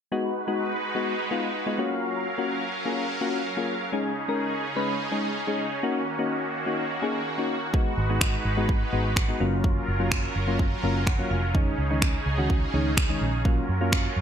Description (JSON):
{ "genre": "dance-pop", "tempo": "126 BPM", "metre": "4/4", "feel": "straight", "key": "G# dorian", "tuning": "A4 = 441 Hz", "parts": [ { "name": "soft electric-piano-like synth keys", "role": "accompaniment", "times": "0.1-14.1 s", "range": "D#3 to A#5", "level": "-28 LUFS", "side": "left 2 dB", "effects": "chorus, sidechain pumping" }, { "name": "filtered supersaw swell", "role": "sustained chords", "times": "0.1-14.2 s", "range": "C#3 to E#5", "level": "-30 LUFS", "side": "right 1 dB", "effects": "sidechain pumping" }, { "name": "house drum kit", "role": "drums", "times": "7.7-14.0 s", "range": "finger snaps, kick drum", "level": "-24 LUFS", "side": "right 1 dB", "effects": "gated reverb" }, { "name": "vintage muted fingered electric bass", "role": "bass", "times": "8.0-14.2 s", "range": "E#1 to F#2", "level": "-27 LUFS", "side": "right 1 dB", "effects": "sidechain pumping" } ], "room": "moderate plate reverb, RT60 1.4 s", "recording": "bright 1980s-style digital production", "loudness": "-23 LUFS", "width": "side -8 dB against mid", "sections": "0.1-14.2 A section", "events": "synth keys fill 10.6-11.5", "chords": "0.1 G#m7; 1.8 F#maj7; 3.9 C#sus2; 5.8 D#m7; 7.7 G#m7; 9.4 F#maj7; 11.5 C#sus2; 13.5 F#maj7" }